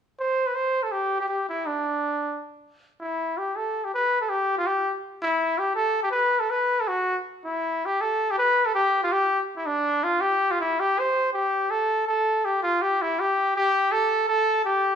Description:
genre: alpine folk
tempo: 162 BPM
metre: 3/4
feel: rubato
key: unclear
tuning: A4 = 438 Hz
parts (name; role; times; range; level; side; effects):
- clear trumpet; solo; 0.2-15.0 s; D4 to C5; -22 LUFS; equal; none
room: wet large studio reverb, RT60 1.2 s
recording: band playing live in one room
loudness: -22 LUFS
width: side -8 dB against mid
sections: 0.6-2.8 A section; 2.8-11.7 B section; 11.7-15.0 C section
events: none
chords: none

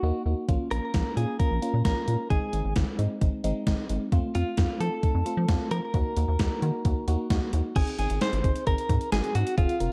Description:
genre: synth-pop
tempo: 132 BPM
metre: 4/4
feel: straight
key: unclear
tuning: A4 = 441 Hz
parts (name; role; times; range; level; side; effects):
- direct-recorded clean electric guitar; melody; 0.0-9.9 s; F4 to C5; -34 LUFS; equal; tremolo, slapback echo
- FM electric piano; accompaniment; 0.0-9.9 s; Ab3 to Bb4; -35 LUFS; equal; phaser
- rubbery square bass; bass; 0.0-9.9 s; F1 to F3; -29 LUFS; equal; none
- gated 80s digital drum machine; drums; 0.5-9.9 s; crash cymbal, hi-hat, kick drum, snare drum; -30 LUFS; equal; gated reverb, gated reverb snare
room: light reverb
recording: dark, warm production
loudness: -27 LUFS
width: mono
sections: 0.0-7.8 A section; 7.8-9.9 B section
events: none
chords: 0.5 Bbm; 2.3 Ab; 4.1 F; 5.9 Ebm; 7.8 Ab

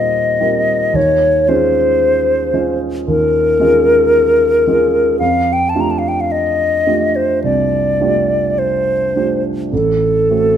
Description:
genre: classical, impressionist duo for flute and grand piano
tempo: 52-58 BPM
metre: 4/4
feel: rubato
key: unclear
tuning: A4 = 440 Hz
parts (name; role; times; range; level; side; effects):
- hollow concert flute; melody; 0.0-10.6 s; A4 to Bb5; -13 LUFS; left 2 dB; none
- warm concert grand piano; accompaniment; 0.0-10.6 s; A1 to Bb4; -17 LUFS; right 4 dB; none
room: moderate recital hall reverb, RT60 1.4 s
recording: close, detailed microphones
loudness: -12 LUFS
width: side -9 dB against mid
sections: 0.0-10.6 A section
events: none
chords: 0.0 Eb69; 1.0 Db69/Eb; 5.2 F69; 9.7 Am6

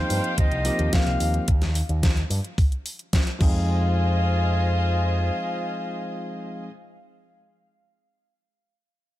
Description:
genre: nu-disco, nu disco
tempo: 109 BPM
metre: 4/4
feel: straight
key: F minor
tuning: A4 = 440 Hz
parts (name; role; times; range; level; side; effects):
- silver concert flute; melody; 0.0-6.6 s; C5 to F5; -30 LUFS; left 1 dB; digital delay
- bell-like tine electric piano; accompaniment; 0.0-6.7 s; F3 to Ab4; -30 LUFS; equal; digital delay
- warm studio string section; sustained chords; 0.0-6.6 s; Eb4 to Ab5; -32 LUFS; left 2 dB; sidechain pumping
- picked electric bass with an envelope filter; bass; 0.0-5.3 s; C2 to G2; -23 LUFS; equal; sidechain pumping
- pop drum kit; drums; 0.1-3.5 s; crash cymbal, hi-hat, snare drum; -30 LUFS; left 1 dB; overdrive
- electronic kick drum; drums; 0.4-3.5 s; none; -21 LUFS; equal; none
room: little or no reverb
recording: none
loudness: -21 LUFS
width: side -15 dB against mid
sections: 0.0-3.7 A section; 3.7-5.9 B section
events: drop 0.0-3.7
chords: 0.0 Eb69; 3.4 Fm7

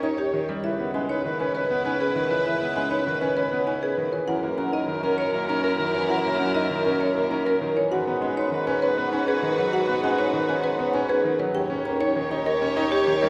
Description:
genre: classical, minimalist pattern music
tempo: 198 BPM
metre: 6/4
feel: straight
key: G# minor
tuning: A4 = 443 Hz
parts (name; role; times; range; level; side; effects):
- marimba with medium hard mallets; melody; 0.0-13.3 s; G4 to A#5; -31 LUFS; equal; none
- bright oboe; second line; 0.0-13.3 s; A#4 to C#5; -33 LUFS; equal; none
- clear concert grand piano; accompaniment; 0.0-13.3 s; D#3 to D#4; -31 LUFS; equal; none
- rich chamber violin section; sustained chords; 0.0-13.3 s; E4 to C#5; -36 LUFS; equal; none
- buzzing marimba with soft mallets; arpeggios; 0.0-13.3 s; C#4 to D#5; -30 LUFS; equal; none
- warm bassoon; bass; 0.0-13.3 s; C#2 to G#2; -32 LUFS; equal; none
room: wet church reverb, RT60 3.5 s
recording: none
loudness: -24 LUFS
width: mono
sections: 0.0-13.3 A section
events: none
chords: 0.0 D#7; 0.6 C#m7; 4.3 F#7; 7.9 G#m7; 11.5 D#7

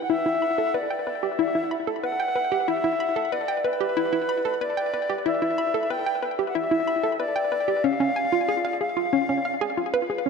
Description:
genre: ambient, sequencer-driven space music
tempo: 93 BPM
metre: 4/4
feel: straight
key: E minor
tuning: A4 = 440 Hz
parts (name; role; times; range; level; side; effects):
- bright reedy wooden flute; melody; 0.0-10.1 s; B4 to G5; -25 LUFS; left 1 dB; ping-pong delay
- hollow square pluck; riff; 0.0-10.3 s; C#4 to B5; -25 LUFS; equal; chorus, ping-pong delay
room: wet plate reverb, RT60 2.8 s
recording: echo-heavy mix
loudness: -22 LUFS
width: side -5 dB against mid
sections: 0.0-10.3 A section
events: none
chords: 0.0 Em7; 7.8 C#

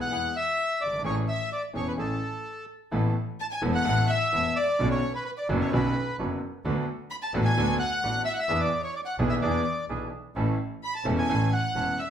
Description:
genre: tango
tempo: 129 BPM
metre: 4/4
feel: rubato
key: A major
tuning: A4 = 439 Hz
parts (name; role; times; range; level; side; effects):
- bandoneon; melody; 0.0-12.1 s; A4 to B5; -29 LUFS; left 1 dB; none
- warm studio violin section; second line; 0.0-12.1 s; A4 to B5; -34 LUFS; equal; none
- clear concert grand piano; accompaniment; 0.0-11.9 s; E1 to A4; -29 LUFS; equal; none
- bandoneon; stabs; 0.0-11.9 s; A3 to B4; -39 LUFS; right 5 dB; none
- clear double bass; bass; 0.0-11.9 s; E1 to E2; -30 LUFS; equal; none
room: moderate large studio reverb, RT60 0.8 s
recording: band playing live in one room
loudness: -24 LUFS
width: side -9 dB against mid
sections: 0.0-2.9 A section; 2.9-12.1 B section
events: none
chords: 0.0 E; 1.0 Amaj7; 2.9 Asus2; 4.8 Bmadd9; 6.6 D6; 8.5 E7; 10.4 A

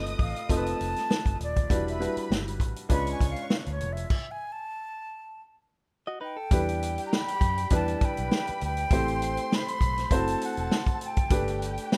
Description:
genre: lush 1970s-style soul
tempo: 100 BPM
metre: 4/4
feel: swing 54% on 16ths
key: E minor from 6.5 s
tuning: A4 = 440 Hz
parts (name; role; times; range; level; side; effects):
- warm studio violin section; second line; 0.0-12.0 s; G4 to Eb6; -41 LUFS; equal; none
- clear grand piano; accompaniment; 0.0-12.0 s; G3 to C5; -34 LUFS; equal; none
- vintage muted fingered electric bass; bass; 0.0-11.8 s; Eb1 to F#2; -35 LUFS; equal; none
- vintage drum kit; drums; 0.1-12.0 s; crash cymbal, hi-hat, kick drum, snare drum; -29 LUFS; equal; none
- concert flute; melody; 0.2-12.0 s; C#5 to B5; -35 LUFS; equal; slapback echo
- direct-recorded clean electric guitar; riff; 6.1-6.7 s; D#4 to D#5; -38 LUFS; equal; none
room: light reverb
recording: rough home demo mix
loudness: -28 LUFS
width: mono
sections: 0.0-6.5 A section; 6.5-12.0 B section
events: flute solo 0.0-6.5; stop 4.1-6.5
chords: 0.0 F7#11; 1.7 Em9; 2.9 C#7b9; 4.1 N.C.; 6.5 Em7; 8.9 Am9; 10.1 F#m7b5; 11.3 G

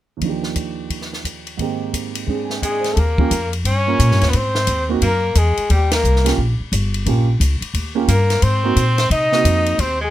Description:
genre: jazz, small-group swing and bop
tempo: 176 BPM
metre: 4/4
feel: swing 63% on 8ths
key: Eb mixolydian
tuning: A4 = 440 Hz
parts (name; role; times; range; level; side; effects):
- warm baby grand piano; accompaniment; 0.2-9.8 s; Eb2 to Ab5; -22 LUFS; right 7 dB; none
- compact cocktail drum kit; drums; 0.2-9.9 s; hi-hat, kick drum, ride cymbal, snare drum; -24 LUFS; left 1 dB; none
- breathy trumpet; melody; 2.6-10.1 s; G4 to Eb5; -20 LUFS; left 2 dB; none
- bright tenor saxophone; second line; 2.6-10.1 s; G3 to Eb4; -25 LUFS; right 2 dB; none
- upright bass; bass; 3.0-10.1 s; G1 to C3; -17 LUFS; equal; none
room: light reverb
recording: none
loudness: -15 LUFS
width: side -13 dB against mid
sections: 0.2-3.0 A section; 3.0-10.1 B section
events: band accent 5.9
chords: 0.2 Ebmaj7; 1.6 Abmaj7; 3.0 Eb7; 4.3 Ab7; 5.7 Eb7; 8.4 Ab7

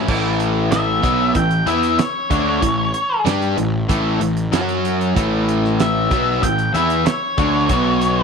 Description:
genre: classic rock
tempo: 95 BPM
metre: 4/4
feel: straight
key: A major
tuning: A4 = 439 Hz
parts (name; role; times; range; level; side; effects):
- crunchy overdriven guitar; riff; 0.0-8.2 s; A2 to G4; -21 LUFS; left 11 dB; none
- overdriven semi-hollow guitar; riff; 0.0-8.2 s; A2 to G4; -21 LUFS; right 11 dB; none
- fuzz picked electric bass; bass; 0.1-8.2 s; A1 to G2; -24 LUFS; equal; overdrive
- damped 70s drum kit; drums; 0.1-8.2 s; crash cymbal, hi-hat, kick drum, snare drum; -22 LUFS; right 3 dB; none
- octave-fuzz lead guitar; melody; 0.7-8.2 s; C#5 to G5; -20 LUFS; left 2 dB; distortion, slapback echo
room: light reverb, small room ambience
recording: 1960s-style stereo with parts hard left and right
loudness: -15 LUFS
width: side -5 dB against mid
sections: 0.1-8.2 A section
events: lead electric guitar solo 0.1-8.2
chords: 0.1 A; 4.5 F#5; 5.2 A; 7.7 B5

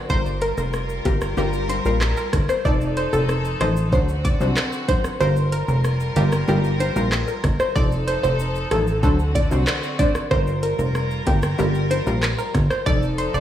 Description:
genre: dancehall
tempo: 94 BPM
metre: 4/4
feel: straight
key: G minor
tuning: A4 = 438 Hz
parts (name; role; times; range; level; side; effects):
- clear studio string section; sustained chords; 0.0-13.4 s; D3 to Bb4; -29 LUFS; left 2 dB; sidechain pumping
- analog pluck; melody; 0.1-13.4 s; G4 to D5; -25 LUFS; equal; chorus, analog delay
- synth brass stab; accompaniment; 0.1-13.4 s; F3 to C5; -27 LUFS; left 2 dB; chorus
- plucky analog bass; bass; 0.1-13.4 s; F1 to D2; -22 LUFS; equal; none
- afro-pop drum kit; drums; 0.1-13.4 s; handclaps, hi-hat, kick drum, rim click, shaker; -24 LUFS; equal; overdrive
- bongos; percussion; 0.1-13.0 s; none; -35 LUFS; right 3 dB; none
room: moderate plate reverb, RT60 1.9 s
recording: dreamy mix soaked in reverb, studio ambience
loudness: -18 LUFS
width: side -11 dB against mid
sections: 0.0-13.4 A section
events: kick muted 5.2-6.5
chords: 0.1 Gm7; 2.7 F7; 3.9 D7; 5.2 Gm7; 7.8 F7; 9.0 D7; 10.3 Gm7; 12.9 F7

